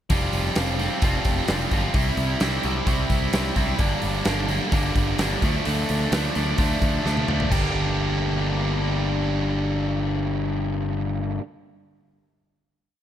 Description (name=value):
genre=classic rock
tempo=130 BPM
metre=4/4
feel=straight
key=G dorian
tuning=A4 = 440 Hz
part: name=distorted electric guitar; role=riff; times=0.1-11.4 s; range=G2 to G4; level=-24 LUFS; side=equal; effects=overdrive
part: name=growling picked electric bass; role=bass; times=0.1-11.4 s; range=F1 to D2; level=-26 LUFS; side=equal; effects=overdrive
part: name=huge arena drum kit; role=drums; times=0.1-7.6 s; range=crash cymbal, hi-hat, kick drum, snare drum, toms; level=-25 LUFS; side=equal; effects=none
room=small room ambience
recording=none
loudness=-21 LUFS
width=side -10 dB against mid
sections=0.1-7.5 pre-chorus; 7.5-11.2 final chord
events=drum fill 7.1-7.5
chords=0.1 Fsus2; 1.9 C; 3.8 Gm; 5.4 Dm; 7.5 Gm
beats=| 0.10 0.56 1.02 1.49 | 1.95 2.41 2.88 3.34 | 3.80 4.27 4.73 5.20 | 5.66 6.12 6.59 7.05 | 7.51 7.98 8.44 8.90 | 9.36 9.82 10.28 10.74